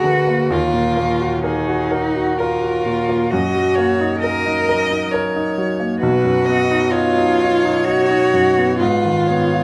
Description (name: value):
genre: classical, slow romantic movement for piano trio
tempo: 65 BPM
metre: 3/4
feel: rubato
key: Eb minor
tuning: A4 = 443 Hz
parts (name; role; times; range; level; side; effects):
- rich violin; melody; 0.0-9.6 s; Gb4 to Eb5; -27 LUFS; equal; none
- rich cello; second line; 0.0-9.6 s; Eb4 to Bb4; -20 LUFS; equal; none
- clear grand piano; accompaniment; 0.0-9.6 s; B1 to D#5; -22 LUFS; equal; none
room: moderate recital hall reverb, RT60 1.5 s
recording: dark, warm production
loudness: -17 LUFS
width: mono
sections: 0.0-9.6 A section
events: none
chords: 0.0 Bb7/D; 0.5 Ebm; 3.3 Ebm/Gb; 6.0 B; 8.8 Fm7b5/Ab